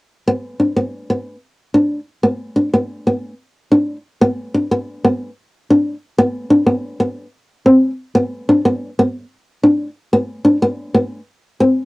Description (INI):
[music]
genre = highlife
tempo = 122 BPM (dotted quarters)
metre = 12/8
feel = straight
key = unclear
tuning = A4 = 439 Hz
[part]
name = nylon-string guitar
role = accompaniment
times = 0.3-11.8 s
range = B3 to D4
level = -13 LUFS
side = equal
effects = cassette tape
[sound]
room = wet booth ambience, RT60 0.2 s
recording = home recording on cassette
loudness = -15 LUFS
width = side -23 dB against mid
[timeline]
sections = 0.3-4.2 A section; 4.2-11.9 B section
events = none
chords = none